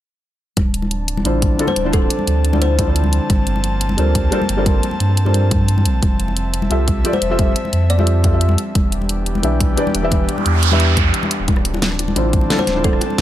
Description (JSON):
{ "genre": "liquid drum and bass", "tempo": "176 BPM", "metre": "4/4", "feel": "straight", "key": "D minor", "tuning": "A4 = 439 Hz", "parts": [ { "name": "airy breathy pad", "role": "sustained chords", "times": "0.8-13.2 s", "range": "E3 to A5", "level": "-25 LUFS", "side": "equal", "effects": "chorus, sidechain pumping" }, { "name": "warm sub bass", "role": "bass", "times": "0.6-13.2 s", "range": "D1 to G2", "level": "-18 LUFS", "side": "equal", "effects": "tube saturation" }, { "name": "electronic kick drum", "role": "drums", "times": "0.6-12.9 s", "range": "none", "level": "-18 LUFS", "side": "equal", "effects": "none" }, { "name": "pop drum kit", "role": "drums", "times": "0.6-13.2 s", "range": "hi-hat, rim click, snare drum", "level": "-22 LUFS", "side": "equal", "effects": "none" }, { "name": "congas and bongos", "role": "percussion", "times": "0.6-13.2 s", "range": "none", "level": "-24 LUFS", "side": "left 2 dB", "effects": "none" }, { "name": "felt-muted upright piano", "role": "accompaniment", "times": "1.2-13.0 s", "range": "D3 to E5", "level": "-22 LUFS", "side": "left 1 dB", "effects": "ping-pong delay" }, { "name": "kalimba", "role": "melody", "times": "1.7-2.9, 7.1-8.2, 12.6-13.0 s", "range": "A4 to D5", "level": "-24 LUFS", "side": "left 2 dB", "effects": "tape echo" }, { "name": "noise sweep", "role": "sound effects", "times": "10.3-11.5 s", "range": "none", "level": "-21 LUFS", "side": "right 5 dB", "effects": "none" } ], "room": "studio reverb", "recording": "none", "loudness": "-14 LUFS", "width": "side -12 dB against mid", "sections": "0.6-13.2 A section", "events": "noise sweep 10.3-11.5", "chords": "0.6 Dm7; 3.3 Gm11; 6.0 Fmaj7; 8.6 Em7; 11.5 Dm7" }